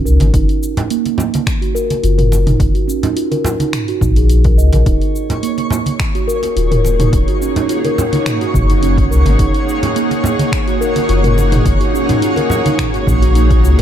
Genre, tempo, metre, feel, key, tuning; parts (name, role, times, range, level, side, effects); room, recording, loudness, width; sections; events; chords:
organic downtempo; 106 BPM; 4/4; swing 54% on 16ths; A4 = 440 Hz
warm sub bass; bass; 0.0-13.8 s; Eb1 to Db2; -12 LUFS; equal
steel tongue drum; arpeggios; 0.1-13.8 s; Bb3 to Eb5; -18 LUFS; right 2 dB; ping-pong delay
deep house drum kit; drums; 0.1-13.8 s; cabasa, finger snaps, hi-hat, toms; -22 LUFS; equal
congas; percussion; 0.2-13.8 s; -20 LUFS; right 1 dB
electronic kick drum; drums; 0.3-13.6 s; -17 LUFS; equal
granular cloud pad; sustained chords; 5.4-13.8 s; Bb3 to Gb5; -20 LUFS; left 1 dB; built-in reverb, sidechain pumping
twinkling granular texture; texture; 5.2-13.8 s; Db5; -25 LUFS; right 1 dB; built-in reverb
light reverb, digital ambience; -12 LUFS; side -10 dB against mid
0.0-13.8 A section
0.3 Gb; 4.9 Ebm7; 9.4 Gb